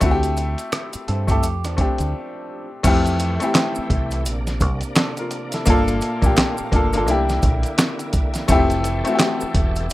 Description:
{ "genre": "R&B, neo-soul", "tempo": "85 BPM", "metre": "4/4", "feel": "swing 61% on 16ths", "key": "unclear", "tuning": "A4 = 440 Hz", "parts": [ { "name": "clear grand piano", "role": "accompaniment", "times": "0.0-9.9 s", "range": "A3 to D5", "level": "-22 LUFS", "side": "left 2 dB", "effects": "none" }, { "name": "deep dub fingered electric bass", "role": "bass", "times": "0.0-9.9 s", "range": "E1 to G2", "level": "-22 LUFS", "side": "equal", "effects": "none" }, { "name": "dusty soul sampler-style drum kit", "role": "drums", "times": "0.0-9.9 s", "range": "crash cymbal, handclaps, hi-hat, kick drum, rim click, snare drum", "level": "-20 LUFS", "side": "equal", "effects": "none" }, { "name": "maracas and finger snaps", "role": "percussion", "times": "0.0-9.9 s", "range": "none", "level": "-34 LUFS", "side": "right 3 dB", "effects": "none" }, { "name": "electric guitar through a small old amp", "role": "second line", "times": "1.1-2.7 s", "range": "F3 to A4", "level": "-31 LUFS", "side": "right 3 dB", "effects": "slapback echo" }, { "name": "bright tonewheel organ", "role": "sustained chords", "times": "2.8-9.9 s", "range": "Bb2 to A4", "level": "-30 LUFS", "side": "right 1 dB", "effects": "fast rotary speaker, overdrive, chorus vibrato" } ], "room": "little or no reverb", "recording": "rough home demo mix", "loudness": "-17 LUFS", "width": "side -17 dB against mid", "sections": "0.0-2.8 A section; 2.8-9.9 B section", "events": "break 2.1-2.8", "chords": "0.0 D9sus4; 1.4 F69; 2.8 Fmaj9; 4.3 Bbadd9; 5.7 Gm9; 7.1 C9; 8.5 Fmaj9" }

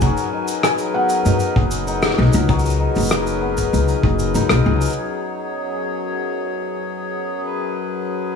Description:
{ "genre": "folktronica", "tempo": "97 BPM", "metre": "4/4", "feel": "straight", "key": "F# major", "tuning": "A4 = 441 Hz", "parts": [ { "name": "felt-muted upright piano", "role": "melody", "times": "0.0-4.3 s", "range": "F#5 to G#5", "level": "-24 LUFS", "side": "left 1 dB", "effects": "digital delay" }, { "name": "hand-pumped harmonium", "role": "sustained chords", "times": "0.0-8.4 s", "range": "F#2 to C#5", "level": "-24 LUFS", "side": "left 2 dB", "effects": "none" }, { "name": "cimbalom", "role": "arpeggios", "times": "0.0-8.4 s", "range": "F#3 to G#4", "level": "-25 LUFS", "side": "left 3 dB", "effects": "digital delay" }, { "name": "upright bass", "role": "bass", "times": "0.0-4.8 s", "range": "F#1 to F#2", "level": "-18 LUFS", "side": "left 1 dB", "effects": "tube saturation" }, { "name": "kick drum", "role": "drums", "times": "0.0-4.2 s", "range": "none", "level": "-20 LUFS", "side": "left 1 dB", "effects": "none" }, { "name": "shaker and rim click", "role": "drums", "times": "0.0-5.1 s", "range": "none", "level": "-23 LUFS", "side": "left 2 dB", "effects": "low-pass filter on snare, low-pass filter on perc, low-pass filter on room" } ], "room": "light reverb, small room ambience", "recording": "none", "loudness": "-17 LUFS", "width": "side -6 dB against mid", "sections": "0.0-5.0 A section; 5.0-8.4 B section", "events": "none", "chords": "0.0 G#m7/F#; 5.0 F#sus2" }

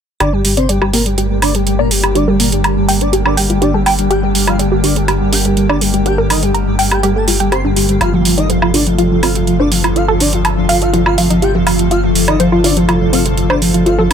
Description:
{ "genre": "melodic techno", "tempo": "123 BPM", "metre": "4/4", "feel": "straight", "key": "G minor", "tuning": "A4 = 440 Hz", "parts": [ { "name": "wide unison lead", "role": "melody", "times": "0.2-14.1 s", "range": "F3 to C5", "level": "-16 LUFS", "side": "equal", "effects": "ping-pong delay" }, { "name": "airy dreamy lead", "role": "second line", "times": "0.2-14.1 s", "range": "F4 to C6", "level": "-21 LUFS", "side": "left 1 dB", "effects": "chorus, ping-pong delay" }, { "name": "evolving wavetable pad", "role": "sustained chords", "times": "1.3-14.1 s", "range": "C3 to A4", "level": "-20 LUFS", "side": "left 1 dB", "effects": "chorus, built-in reverb, phaser" }, { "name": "tight sequenced synth", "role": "arpeggios", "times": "0.2-14.0 s", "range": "C4 to Bb5", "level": "-19 LUFS", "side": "equal", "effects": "chorus, ping-pong delay" }, { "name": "round analog bass", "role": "bass", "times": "0.2-14.1 s", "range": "G1", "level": "-18 LUFS", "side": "equal", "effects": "none" }, { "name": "electronic hi-hat and woodblock", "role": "drums", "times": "0.2-14.1 s", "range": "none", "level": "-17 LUFS", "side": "right 3 dB", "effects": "none" } ], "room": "light reverb", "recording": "none", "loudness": "-11 LUFS", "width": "side -8 dB against mid", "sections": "0.2-14.1 A section", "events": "filter sweep on synth arpeggio sound 0.2-14.1; filter sweep on analog synth lead 0.2-14.1; filter sweep on digital synth lead 0.2-14.1", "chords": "0.2 Gmadd9; 8.0 F/G" }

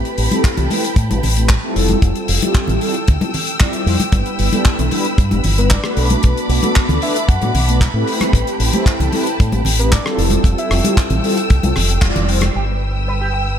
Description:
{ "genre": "nu-disco, nu disco", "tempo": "114 BPM", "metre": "4/4", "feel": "straight", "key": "unclear", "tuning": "A4 = 441 Hz", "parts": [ { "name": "mellow synth brass", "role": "accompaniment", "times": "0.0-13.5 s", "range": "G3 to D5", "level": "-20 LUFS", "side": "equal", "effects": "chorus, sidechain pumping, tape echo" }, { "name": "dark chamber string section", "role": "sustained chords", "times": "0.0-13.6 s", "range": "A4 to E6", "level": "-25 LUFS", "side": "right 1 dB", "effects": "sidechain pumping" }, { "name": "damped 70s drum kit", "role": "drums", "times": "0.1-12.5 s", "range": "handclaps, hi-hat, rim click", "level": "-22 LUFS", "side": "left 2 dB", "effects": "studio reverb" }, { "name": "fingered electric bass with an envelope filter", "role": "bass", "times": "0.2-13.6 s", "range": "F1 to A2", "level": "-17 LUFS", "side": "equal", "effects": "none" }, { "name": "congas", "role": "percussion", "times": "0.3-12.5 s", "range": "none", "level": "-24 LUFS", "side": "left 2 dB", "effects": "none" }, { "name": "kick drum", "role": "drums", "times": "0.4-12.1 s", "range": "none", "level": "-13 LUFS", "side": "equal", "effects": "studio reverb" }, { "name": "soft octave-layered synth lead", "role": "melody", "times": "5.6-11.0 s", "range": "B4 to F#5", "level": "-27 LUFS", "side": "left 1 dB", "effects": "chorus, cassette tape, diffuse ambient delay" }, { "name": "electric guitar with an envelope filter", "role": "riff", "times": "12.6-13.4 s", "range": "G4 to G5", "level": "-26 LUFS", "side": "right 4 dB", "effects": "lush chorus, low-pass filter, tape echo" } ], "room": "light reverb, studio ambience", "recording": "none", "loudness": "-13 LUFS", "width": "side -9 dB against mid", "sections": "0.0-12.6 A section; 12.6-13.6 B section", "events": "band accent 12.0; filter sweep on analog polysynth 12.6-13.6", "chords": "0.0 Am9; 1.8 Fmaj9; 4.1 G6; 6.0 Bm7; 8.1 Am9; 10.2 Fmaj9; 12.6 G6" }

